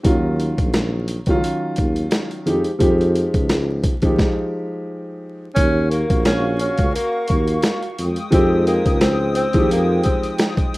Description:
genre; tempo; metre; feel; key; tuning
hip hop, boom-bap hip-hop; 87 BPM; 4/4; swing 55% on 16ths; unclear; A4 = 443 Hz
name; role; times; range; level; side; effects
dark upright piano; accompaniment; 0.0-10.8 s; Eb3 to G4; -21 LUFS; equal; none
boom bap sampler-style drum kit; drums; 0.0-10.8 s; hi-hat, kick drum, snare drum; -20 LUFS; equal; none
mellow tuba; bass; 0.1-10.0 s; Bb1 to F2; -21 LUFS; equal; none
breathy tenor saxophone; melody; 5.5-10.4 s; Bb3 to Db4; -22 LUFS; equal; none
hollow soft pad; sustained chords; 5.6-10.8 s; Ab3 to Eb6; -27 LUFS; equal; chorus
room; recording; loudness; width
small room ambience; rough home demo mix, vinyl crackle; -16 LUFS; side -20 dB against mid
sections
0.0-5.6 A section; 5.6-10.8 B section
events
stop 4.2-5.6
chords
0.0 Ebm9; 2.5 Fm9; 5.6 Ebm9; 8.0 Fm9

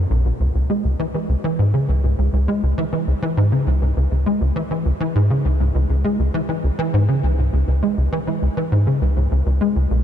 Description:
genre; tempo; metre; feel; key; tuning
ambient; 101 BPM; 4/4; straight; C# minor; A4 = 440 Hz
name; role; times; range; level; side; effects
tight sequencer bass; solo; 0.0-10.0 s; B1 to G#3; -17 LUFS; equal; ensemble chorus, tape echo
room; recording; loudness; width
light reverb; dark, warm production; -17 LUFS; side -10 dB against mid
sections
0.4-10.0 A section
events
none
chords
none

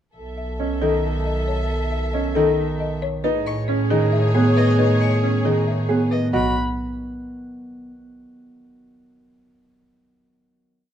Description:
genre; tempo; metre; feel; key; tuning
classical, minimalist pattern music; 272 BPM (eighths); 7/8; straight; B mixolydian; A4 = 439 Hz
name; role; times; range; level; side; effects
warm clarinet; second line; 0.2-6.1 s; G#4 to A4; -29 LUFS; right 3 dB; none
rich studio violin section; sustained chords; 0.2-6.1 s; G#4 to E5; -30 LUFS; left 3 dB; none
rich studio double bass section; bass; 0.2-6.5 s; B1 to A2; -23 LUFS; equal; none
folk marimba with medium hard mallets; melody; 0.4-6.5 s; G#4 to E5; -25 LUFS; left 6 dB; none
clear baby grand piano; arpeggios; 0.6-6.5 s; C#4 to G#4; -26 LUFS; right 7 dB; none
Celtic harp; accompaniment; 0.8-7.9 s; D#3 to B3; -25 LUFS; right 1 dB; none
rich violin; arpeggios; 3.5-6.5 s; D#5 to C#6; -30 LUFS; left 3 dB; none
room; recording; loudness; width
light reverb; dark, warm production; -18 LUFS; side -9 dB against mid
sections
0.2-6.3 A section; 6.3-7.9 final chord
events
none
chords
0.2 B9sus4; 3.2 Amaj9; 6.3 B5

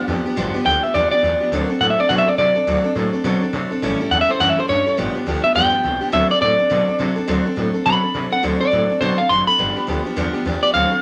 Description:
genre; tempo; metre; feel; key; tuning
rockabilly; 208 BPM; 4/4; swing 61% on 8ths; D mixolydian; A4 = 441 Hz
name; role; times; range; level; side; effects
electric guitar at the edge of break-up; melody; 0.0-11.0 s; C5 to C6; -19 LUFS; equal; none
picked steel-string acoustic guitar; accompaniment; 0.0-11.0 s; G2 to A4; -24 LUFS; equal; none
upright bass; bass; 0.1-10.9 s; F#1 to C3; -28 LUFS; equal; none
room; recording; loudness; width
light reverb; none; -18 LUFS; mono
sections
0.0-8.4 A section; 8.4-11.0 B section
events
clean electric guitar solo 8.4-11.0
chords
0.0 G7; 1.5 D7; 3.8 A7; 5.0 G7; 6.1 D7; 9.6 G7

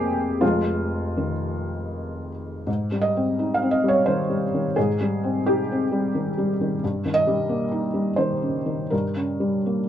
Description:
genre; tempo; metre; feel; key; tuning
neoclassical minimalist piano; 78-89 BPM; 3/4; rubato; unclear; A4 = 442 Hz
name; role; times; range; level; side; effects
felt-muted upright piano; solo; 0.0-9.9 s; F1 to F5; -21 LUFS; equal; none
room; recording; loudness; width
moderate small room reverb, RT60 0.5 s; worn, warbling old tape, cassette tape, warbly pitch drift; -21 LUFS; side -10 dB against mid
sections
0.0-2.7 A section; 2.7-9.9 A section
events
none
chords
0.0 Fm7; 2.7 Abmaj7; 6.8 Eb7/G

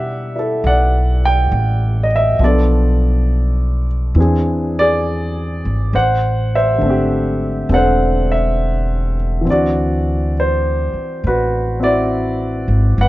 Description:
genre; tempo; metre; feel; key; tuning
jazz ballad; 68 BPM; 4/4; swing 67% on 8ths; unclear; A4 = 439 Hz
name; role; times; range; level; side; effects
warm concert grand piano; accompaniment; 0.0-13.1 s; D3 to G5; -17 LUFS; equal; none
upright bass; bass; 0.0-13.1 s; E1 to B2; -17 LUFS; equal; none
room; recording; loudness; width
little or no reverb; worn, warbling old tape, cassette tape, warbly pitch drift; -14 LUFS; side -17 dB against mid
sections
0.0-13.1 A section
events
none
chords
0.0 Em7; 2.4 Bm7b5; 4.2 Eaug7; 5.9 Am7; 9.5 D9

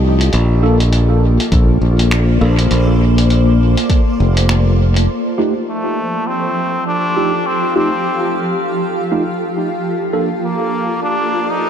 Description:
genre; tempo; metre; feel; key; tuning
ambient dub; 101 BPM; 4/4; swing 59% on 16ths; F mixolydian; A4 = 440 Hz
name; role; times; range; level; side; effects
granular cloud pad; sustained chords; 0.0-11.7 s; F3 to F5; -19 LUFS; equal; built-in reverb
modern bright fingered electric bass; bass; 0.0-5.1 s; F1 to C2; -12 LUFS; equal; none
lo-fi sampler-style drum kit; drums; 0.2-5.1 s; finger snaps, hi-hat; -23 LUFS; left 1 dB; dub echo
tine electric piano; stabs; 0.6-10.3 s; A3 to A4; -22 LUFS; right 2 dB; phaser, low-pass filter, dub echo
electronic kick drum; drums; 1.5-4.0 s; none; -13 LUFS; equal; none
trombone with metal mute; melody; 5.7-11.7 s; A3 to Eb4; -19 LUFS; left 1 dB; dub echo
room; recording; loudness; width
light reverb, digital ambience; none; -12 LUFS; side -8 dB against mid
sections
0.0-5.1 A section; 5.1-11.7 B section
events
none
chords
0.3 Bbmaj7; 5.1 Fadd9; 9.8 Bbmaj7

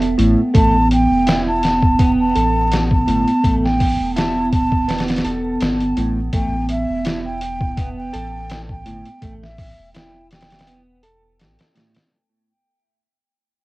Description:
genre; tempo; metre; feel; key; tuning
trip hop; 83 BPM; 4/4; swing 54% on 16ths; unclear; A4 = 444 Hz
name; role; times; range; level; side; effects
warbly tape-like pad; sustained chords; 0.0-12.1 s; B3; -20 LUFS; right 1 dB; chorus, built-in reverb, vintage 12-bit sampler grit, cassette tape
semi-hollow electric guitar; arpeggios; 0.0-12.0 s; A2 to A4; -24 LUFS; right 1 dB; analog chorus, cassette tape, tape echo, plate reverb
soft dub sub bass; bass; 0.0-11.6 s; E1 to A1; -23 LUFS; equal; none
trip hop sampler-style drum kit; drums; 0.0-12.1 s; hi-hat, kick drum, snare drum; -20 LUFS; equal; overdrive, cassette tape
mellow hollow concert flute; melody; 0.6-10.8 s; E5 to A5; -22 LUFS; equal; cassette tape, tape echo, plate reverb
room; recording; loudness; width
moderate booth ambience, RT60 0.2 s; home recording on cassette, vinyl crackle; -15 LUFS; side -20 dB against mid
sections
0.0-12.1 A section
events
fade-out 0.5-12.1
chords
0.0 Em

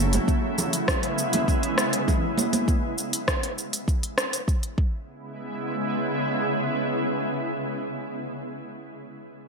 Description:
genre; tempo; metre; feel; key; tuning
sunset chillout; 100 BPM; 4/4; straight; C# minor; A4 = 441 Hz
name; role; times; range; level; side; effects
shimmering ambient pad; sustained chords; 0.0-8.2 s; C#3 to E4; -27 LUFS; equal; chorus, built-in reverb
deep house drum kit; drums; 0.1-4.8 s; cabasa, hi-hat, rim click; -26 LUFS; equal; gated reverb
congas; percussion; 0.1-2.7 s; none; -28 LUFS; right 3 dB; none
electronic kick drum; drums; 0.3-4.9 s; none; -24 LUFS; equal; none
room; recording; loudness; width
moderate lush hall reverb, RT60 1.7 s; bright 1980s-style digital production; -23 LUFS; side -4 dB against mid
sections
0.0-5.1 A section; 5.1-7.5 B section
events
none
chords
0.3 E6; 2.7 N.C.; 4.8 C#m7

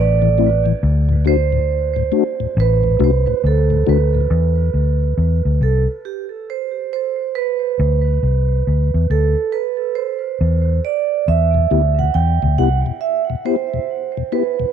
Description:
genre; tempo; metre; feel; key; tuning
roots reggae; 69 BPM; 4/4; swing 63% on 16ths; unclear; A4 = 440 Hz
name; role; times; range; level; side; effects
vibraphone with medium mallets; melody; 0.0-14.7 s; G4 to G5; -20 LUFS; right 12 dB; dub echo
vintage muted fingered electric bass; bass; 0.0-12.8 s; A1 to E2; -15 LUFS; left 1 dB; none
mellow tonewheel organ; accompaniment; 0.2-4.2, 11.5-14.7 s; D2 to G4; -20 LUFS; left 13 dB; chorus vibrato, stopped rotary speaker
room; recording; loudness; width
light reverb; 1960s-style stereo with parts hard left and right; -15 LUFS; side -8 dB against mid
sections
0.0-4.3 A section; 4.3-14.7 B section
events
none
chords
0.0 Am; 0.8 D; 4.3 Cmaj9; 11.3 Em

